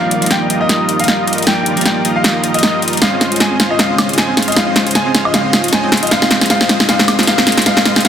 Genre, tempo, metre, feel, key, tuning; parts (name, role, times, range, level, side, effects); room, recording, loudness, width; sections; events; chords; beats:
future bass; 155 BPM; 4/4; swing 56% on 16ths, half-time; A4 = 440 Hz
bright grand piano; melody; 0.0-8.1 s; Eb5 to Ab5; -18 LUFS; left 3 dB; tape echo
clean electric guitar; accompaniment; 0.0-3.0 s; F3 to D4; -21 LUFS; right 6 dB; ensemble chorus
ethereal airy pad; sustained chords; 0.0-8.1 s; Db3 to D6; -27 LUFS; right 1 dB; ensemble chorus, built-in reverb
dense compressed supersaw; riff; 0.0-8.1 s; G3 to F5; -18 LUFS; right 1 dB; low-pass filter
big-room dance drum kit; drums; 0.1-8.1 s; hi-hat, snare drum, woodblock; -13 LUFS; equal
wide unison pluck; arpeggios; 3.1-8.0 s; C4 to F4; -24 LUFS; right 2 dB
wet digital room reverb, RT60 1.2 s; dense, heavily limited modern master; -11 LUFS; side -9 dB against mid
0.0-8.1 A section
build-up 0.0-8.1; drum fill 0.0-8.1
0.0 Ebmaj9; 3.0 Dbmaj9; 5.9 Bb7sus4
0.31 0.69 1.08 | 1.47 1.85 2.24 2.63 | 3.02 3.40 3.79 4.18 | 4.57 4.95 5.34 5.73 | 6.11 6.50 6.89 7.27 | 7.66 8.05